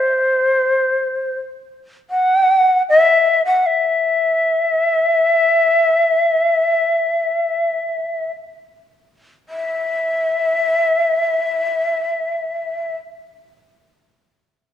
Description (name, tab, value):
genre	japanese traditional, Japanese chamber music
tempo	free time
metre	none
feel	none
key	unclear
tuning	A4 = 440 Hz
part	breathy shakuhachi	solo	0.0-13.0 s	C5 to F#5	-15 LUFS	left 1 dB	none
room	moderate scoring stage reverb, RT60 1.7 s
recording	dark, warm production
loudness	-15 LUFS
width	side -10 dB against mid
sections	0.0-9.5 A section; 9.5-14.3 B section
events	slowing down 2.1-9.5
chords	none